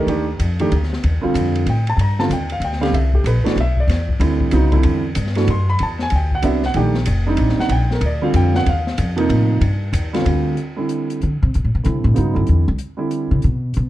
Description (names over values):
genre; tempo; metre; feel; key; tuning
modal jazz; 189 BPM; 3/4; swing 63% on 8ths; unclear; A4 = 444 Hz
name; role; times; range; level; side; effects
warm concert grand piano; accompaniment; 0.0-13.4 s; C3 to C6; -20 LUFS; right 2 dB; none
upright bass; bass; 0.0-13.9 s; F1 to D3; -17 LUFS; equal; none
open jazz drum kit; drums; 0.1-13.8 s; hi-hat, kick drum, ride cymbal, snare drum; -26 LUFS; left 2 dB; none
room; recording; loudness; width
little or no reverb; dark, warm production; -16 LUFS; side -14 dB against mid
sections
0.0-10.6 A section; 10.6-13.9 A section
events
upright bass solo 10.6-13.9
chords
0.0 Ebmaj9; 2.9 Cmaj9; 6.8 Ebmaj9; 10.6 Cmaj9